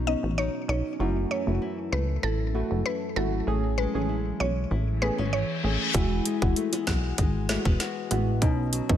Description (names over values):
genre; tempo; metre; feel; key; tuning
dancehall; 97 BPM; 4/4; straight; E major; A4 = 440 Hz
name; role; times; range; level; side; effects
deep dark ambient pad; sustained chords; 0.0-5.9 s; E3 to A4; -36 LUFS; right 2 dB; chorus, built-in reverb, sidechain pumping
nylon-string guitar; arpeggios; 0.0-9.0 s; F#2 to F#4; -34 LUFS; left 8 dB; none
plucky analog bass; bass; 0.0-9.0 s; E1 to C#2; -27 LUFS; equal; none
mallet-like synth pluck; melody; 0.1-5.8 s; A4 to D#5; -32 LUFS; equal; chorus, ping-pong delay
deep mellow chord stab; accompaniment; 0.1-9.0 s; G#3 to G#4; -31 LUFS; right 3 dB; chorus
reverse cymbal; sound effects; 5.2-5.9 s; none; -32 LUFS; left 5 dB; none
island pop drum kit; drums; 5.9-9.0 s; hi-hat, kick drum, snare drum; -26 LUFS; equal; none
bongos; percussion; 6.7-8.3 s; none; -38 LUFS; right 6 dB; none
room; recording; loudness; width
light reverb; none; -24 LUFS; side -10 dB against mid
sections
0.0-5.9 A section; 5.9-9.0 B section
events
reverse cymbal 5.2-5.9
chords
0.0 Badd9; 1.0 F#m7; 3.5 Amaj7; 5.9 Eadd9; 8.4 Badd9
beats
0.38 | 1.00 1.62 2.23 2.85 | 3.47 4.09 4.71 5.33 | 5.95 6.56 7.18 7.80 | 8.42